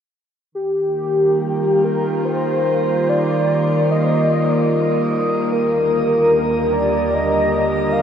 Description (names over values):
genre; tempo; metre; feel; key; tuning
ambient; free time; none; none; Eb major; A4 = 440 Hz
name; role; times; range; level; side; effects
warm velvety synth lead; melody; 0.5-8.0 s; G4 to F5; -18 LUFS; equal; chorus, tape echo
evolving wavetable pad; sustained chords; 0.9-8.0 s; Eb2 to Bb4; -18 LUFS; equal; chorus, built-in reverb
room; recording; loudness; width
wet shimmer reverb, RT60 8.1 s; none; -15 LUFS; side -8 dB against mid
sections
0.5-8.0 A section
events
none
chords
0.5 Ebadd9; 5.5 Gm/Eb